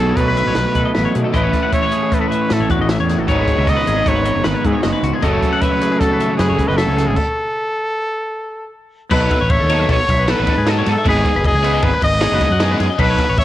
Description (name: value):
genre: math rock and midwest emo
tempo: 154 BPM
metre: 5/4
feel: straight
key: unclear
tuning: A4 = 441 Hz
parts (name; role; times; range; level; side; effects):
- clear trumpet; melody; 0.0-13.4 s; F#4 to D#5; -20 LUFS; equal; cassette tape
- twangy electric guitar; accompaniment; 0.0-7.2 s; A2 to B4; -28 LUFS; right 7 dB; lush chorus, cassette tape
- twelve-string electric guitar; arpeggios; 0.0-13.4 s; F#4 to F#5; -23 LUFS; left 6 dB; spring reverb, cassette tape, tape echo
- overdriven electric guitar; riff; 0.0-13.2 s; F#2 to A4; -20 LUFS; equal; spring reverb, cassette tape
- fuzz fingered electric bass; bass; 0.0-13.4 s; F#1 to B2; -19 LUFS; equal; overdrive
- compact cocktail drum kit; drums; 0.2-13.4 s; crash cymbal, hi-hat, kick drum, ride cymbal, snare drum; -21 LUFS; equal; none
room: light reverb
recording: home recording on cassette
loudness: -14 LUFS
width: side -13 dB against mid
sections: 0.0-9.1 A section; 9.1-13.4 B section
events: stop 7.2-9.1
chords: 0.0 Amaj9; 3.3 F#m9; 7.2 N.C.; 9.1 B9sus4; 11.1 G#m7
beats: 0.18 0.57 0.96 | 1.35 1.74 2.12 2.51 2.90 | 3.29 3.68 4.07 4.46 4.84 | 5.23 5.62 6.01 6.40 6.79 | 7.17 7.56 7.95 8.34 8.73 | 9.12 9.50 9.89 10.28 10.67 | 11.05 11.44 11.83 12.22 12.61 | 12.99 13.38